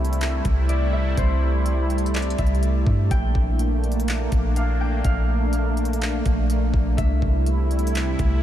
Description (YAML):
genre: hip hop, atmospheric cloud-rap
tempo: 124 BPM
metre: 4/4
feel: half-time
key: C mixolydian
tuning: A4 = 441 Hz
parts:
  - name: concert harp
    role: melody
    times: 0.0-8.4 s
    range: C5 to G5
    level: -32 LUFS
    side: left 2 dB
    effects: low-pass filter, diffuse ambient delay
  - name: sweeping resonant pad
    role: sustained chords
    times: 0.0-8.4 s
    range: C3 to E4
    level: -26 LUFS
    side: right 1 dB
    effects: chorus, sidechain pumping
  - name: soft 808-style bass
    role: bass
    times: 0.0-8.4 s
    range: Bb1 to G2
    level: -21 LUFS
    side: equal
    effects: none
  - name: trap drum kit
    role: drums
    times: 0.0-8.3 s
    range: handclaps, hi-hat, kick drum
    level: -26 LUFS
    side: equal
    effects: none
room: moderate huge ambient reverb, RT60 7.6 s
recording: dreamy mix soaked in reverb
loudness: -19 LUFS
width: side -11 dB against mid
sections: 0.0-8.4 A section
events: none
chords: 0.0 C6; 3.1 Bbmaj7; 7.0 C6